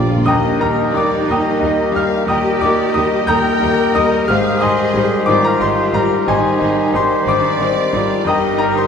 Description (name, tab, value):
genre	classical, romantic movement for piano and orchestra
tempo	60 BPM (dotted quarters)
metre	12/8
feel	rubato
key	Eb major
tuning	A4 = 437 Hz
part	clear grand piano	melody	0.0-8.9 s	Eb2 to G6	-16 LUFS	left 2 dB	none
part	warm oboe	second line	0.0-8.9 s	Ab4 to G5	-26 LUFS	right 2 dB	none
part	warm symphonic violin section	second line	0.0-8.9 s	F4 to G5	-26 LUFS	left 2 dB	none
part	rich studio double bass section	bass	0.0-8.9 s	G1 to Eb2	-26 LUFS	right 4 dB	none
part	warm symphonic cello section	bass	0.0-8.9 s	Bb2 to Bb4	-23 LUFS	right 3 dB	none
part	timpani	percussion	0.0-1.2 s	Bb2 to Eb3	-20 LUFS	equal	none
part	rich symphonic violin section	melody	0.2-8.9 s	Bb4 to C5	-34 LUFS	left 7 dB	none
part	bright clarinet	second line	0.2-8.9 s	G4	-26 LUFS	left 2 dB	none
part	rich symphonic viola section	accompaniment	0.2-8.9 s	G3 to Eb4	-29 LUFS	equal	none
part	mellow French horn section	sustained chords	0.2-8.9 s	G3 to C5	-24 LUFS	left 5 dB	none
part	concert flute	second line	0.3-8.9 s	Bb4 to C5	-25 LUFS	left 3 dB	none
part	warm bassoon	accompaniment	0.3-8.9 s	Eb3	-25 LUFS	right 2 dB	none
room	wet concert hall reverb, RT60 2.1 s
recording	minimal, uncompressed stereo recording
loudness	-13 LUFS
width	side -7 dB against mid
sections	0.3-8.9 A section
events	timpani fill 0.0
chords	0.3 Eb; 4.3 Abmaj7; 8.3 Eb/G